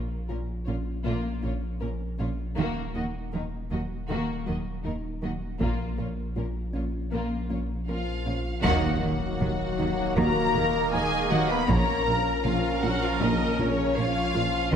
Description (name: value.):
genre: cinematic, hybrid orchestral and electronic film score.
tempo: 79 BPM.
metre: 4/4.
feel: straight.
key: Eb minor.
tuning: A4 = 440 Hz.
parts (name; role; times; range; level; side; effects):
thumb-piano-like synth pluck; arpeggios; 0.0-14.8 s; Eb3 to Bb4; -37 LUFS; left 4 dB; chorus, digital delay.
punchy sub bass; bass; 0.0-14.8 s; Eb1 to Bb1; -34 LUFS; equal; none.
rich symphonic violin section; melody; 0.3-14.8 s; F4 to Cb6; -32 LUFS; left 2 dB; none.
rich symphonic violin section; second line; 0.3-14.8 s; Bb3 to Cb5; -35 LUFS; left 4 dB; none.
warm symphonic viola section; accompaniment; 0.3-14.8 s; Bb3 to Eb5; -35 LUFS; right 2 dB; none.
dark symphonic cello section; bass; 0.3-14.8 s; Bb2 to Eb3; -33 LUFS; right 3 dB; none.
rich symphonic double bass section; bass; 0.3-14.8 s; Bb1 to Eb2; -34 LUFS; right 2 dB; none.
taiko ensemble; drums; 2.6-14.8 s; none; -33 LUFS; equal; none.
dark French horn section; sustained chords; 7.9-14.8 s; Db3 to Cb4; -32 LUFS; left 6 dB; none.
bright trombone section; sustained chords; 8.6-14.8 s; Eb3 to Db4; -32 LUFS; right 4 dB; none.
dark tuba; bass; 8.6-14.8 s; Bb1 to Eb2; -33 LUFS; right 3 dB; none.
impact; sound effects; 8.7-11.7 s; none; -37 LUFS; left 1 dB; none.
room: wet scoring stage reverb, RT60 1.8 s.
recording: none.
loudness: -25 LUFS.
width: side -8 dB against mid.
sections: 0.0-8.6 A section; 8.6-14.8 B section.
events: band accent 8.6-9.4; impact 8.6-11.7.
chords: 0.0 Bbm; 2.6 Ebm; 5.6 Bbm; 8.6 Ebm; 11.7 Bbm.